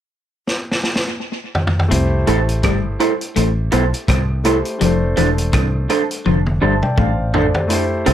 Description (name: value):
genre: lovers rock reggae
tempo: 83 BPM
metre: 4/4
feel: swing 58% on 16ths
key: C major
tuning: A4 = 442 Hz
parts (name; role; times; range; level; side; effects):
- vintage drum kit; drums; 0.5-8.1 s; hi-hat, kick drum, rim click, snare drum, toms; -20 LUFS; equal; tape echo
- warm grand piano; accompaniment; 1.9-8.1 s; G3 to A5; -23 LUFS; left 2 dB; plate reverb
- semi-hollow electric guitar; riff; 1.9-8.1 s; E3 to C4; -22 LUFS; left 6 dB; tape echo
- fingered electric bass; bass; 1.9-8.1 s; E1 to C2; -18 LUFS; equal; none
- electric guitar through a small old amp; stabs; 2.3-8.1 s; D4 to C5; -19 LUFS; right 4 dB; wide subtle chorus, tape echo, plate reverb
room: light reverb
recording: none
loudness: -15 LUFS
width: side -11 dB against mid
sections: 0.0-1.9 A section; 1.9-7.7 B section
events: drum fill 0.5-1.9, 6.3-7.7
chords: 0.0 N.C.; 1.9 C6; 4.8 F6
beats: 0.46 1.19 | 1.91 2.63 3.36 4.08 | 4.80 5.53 6.25 6.98 | 7.70